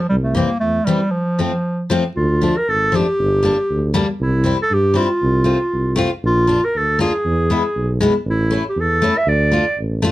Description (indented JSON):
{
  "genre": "alpine folk, alpine dance band",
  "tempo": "118 BPM",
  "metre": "2/4",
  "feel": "straight",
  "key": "D minor",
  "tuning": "A4 = 441 Hz",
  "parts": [
    { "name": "warm clarinet", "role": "melody", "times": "0.0-9.8 s", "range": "F3 to E5", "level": "-18 LUFS", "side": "right 1 dB", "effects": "none" },
    { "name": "dark tuba", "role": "bass", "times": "0.1-10.1 s", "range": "G1 to G2", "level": "-19 LUFS", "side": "right 1 dB", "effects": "none" },
    { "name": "picked steel-string acoustic guitar", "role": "accompaniment", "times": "0.3-10.1 s", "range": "E3 to F4", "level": "-19 LUFS", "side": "left 3 dB", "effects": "none" }
  ],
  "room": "light reverb",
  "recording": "dark, warm production",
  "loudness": "-15 LUFS",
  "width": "side -16 dB against mid",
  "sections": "0.0-2.2 A section; 2.2-10.1 B section",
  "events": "break 1.1-2.2",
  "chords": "0.1 C; 1.1 F; 2.2 Dm; 3.2 Gm; 4.2 C; 5.2 F/C; 6.2 Bb; 7.3 E; 8.3 A; 9.3 Dm",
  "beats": "| 0.12 0.63 | 1.14 1.66 | 2.17 2.69 | 3.19 3.70 | 4.20 4.71 | 5.21 5.72 | 6.23 6.74 | 7.25 7.76 | 8.27 8.77 | 9.27 9.78"
}